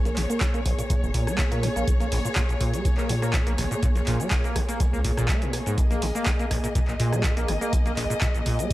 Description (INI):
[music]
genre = acid house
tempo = 123 BPM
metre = 4/4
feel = straight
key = Bb minor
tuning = A4 = 440 Hz
[part]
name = dark symphonic string section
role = sustained chords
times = 0.0-8.7 s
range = Bb3 to Eb5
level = -31 LUFS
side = equal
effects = sidechain pumping
[part]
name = saturated sub bass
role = bass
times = 0.0-8.1 s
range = F1 to Bb2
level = -28 LUFS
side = equal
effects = sidechain pumping
[part]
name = acid bass, saw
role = riff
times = 0.1-8.7 s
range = Bb1 to Bb3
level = -28 LUFS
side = equal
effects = overdrive, lush chorus, sidechain pumping, tape echo
[part]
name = dusty soul sampler-style drum kit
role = drums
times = 0.1-8.7 s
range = hi-hat, snare drum, tambourine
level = -42 LUFS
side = equal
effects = none
[part]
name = punchy analog drum machine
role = drums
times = 0.1-8.7 s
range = handclaps, hi-hat, rim click, shaker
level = -31 LUFS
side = equal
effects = overdrive
[part]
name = electronic kick drum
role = drums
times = 0.4-8.7 s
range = none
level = -25 LUFS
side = equal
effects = none
[sound]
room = digital ambience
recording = none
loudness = -22 LUFS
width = side -16 dB against mid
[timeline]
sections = 0.0-8.7 A section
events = none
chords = 0.0 Bbm7